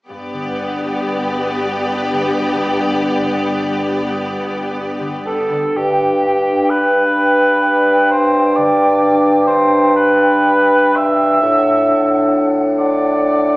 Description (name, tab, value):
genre	classical, slow romantic movement for symphony orchestra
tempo	37-46 BPM (dotted quarters)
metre	12/8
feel	rubato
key	G major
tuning	A4 = 444 Hz
part	rich symphonic violin section	melody	0.1-5.5 s	D5	-26 LUFS	left 1 dB	none
part	rich chamber violin section	second line	0.1-5.5 s	G4	-23 LUFS	left 1 dB	none
part	rich symphonic viola section	accompaniment	0.1-5.5 s	B3	-22 LUFS	equal	none
part	concert harp	arpeggios	0.1-13.6 s	G2 to D5	-26 LUFS	left 1 dB	none
part	warm chamber cello section	bass	0.1-5.5 s	G2	-28 LUFS	right 1 dB	none
part	warm chamber double bass section	bass	0.1-5.5 s	G1	-34 LUFS	equal	none
part	mellow cor anglais	second line	5.3-13.6 s	G4 to E5	-15 LUFS	equal	none
part	large flute ensemble	second line	5.8-13.6 s	F#5 to G5	-19 LUFS	equal	none
part	warm clarinet	second line	5.8-13.6 s	D4	-19 LUFS	equal	none
part	warm bassoon	accompaniment	5.8-13.6 s	G2 to A2	-16 LUFS	equal	none
room	wet recital hall reverb, RT60 1.4 s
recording	recorded in a church or concert hall, small speaker sound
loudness	-12 LUFS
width	side -22 dB against mid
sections	0.1-5.8 A section; 5.8-13.6 B section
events	none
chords	0.1 G; 11.4 D7/A